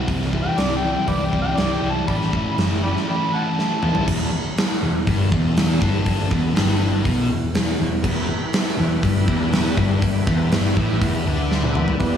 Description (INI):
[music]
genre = blues rock power trio and southern rock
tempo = 121 BPM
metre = 4/4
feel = straight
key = E minor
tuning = A4 = 437 Hz
[part]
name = sludgy distorted guitar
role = riff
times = 0.0-12.2 s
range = E2 to E4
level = -23 LUFS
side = left 1 dB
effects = overdrive
[part]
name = hollow-body short-scale picked electric bass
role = bass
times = 0.1-12.2 s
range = E1 to D2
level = -24 LUFS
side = equal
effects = none
[part]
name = huge arena drum kit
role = drums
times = 0.1-12.1 s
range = crash cymbal, hi-hat, kick drum, snare drum, toms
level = -21 LUFS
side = equal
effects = none
[part]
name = overdriven harmonica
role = melody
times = 0.4-4.1 s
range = G4 to B5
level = -26 LUFS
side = equal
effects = slapback echo, analog delay
[part]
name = overdriven tonewheel organ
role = sustained chords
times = 8.0-12.2 s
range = E3 to B4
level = -29 LUFS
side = right 2 dB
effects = slow rotary speaker, chorus vibrato
[sound]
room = moderate lush hall reverb, RT60 1.7 s, studio ambience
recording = big arena sound, studio reverb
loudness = -18 LUFS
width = side -8 dB against mid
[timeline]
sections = 0.0-4.1 A section; 4.1-12.0 B section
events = drum fill 3.6-4.1, 11.5-12.0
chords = 0.0 C; 2.1 A; 4.1 Em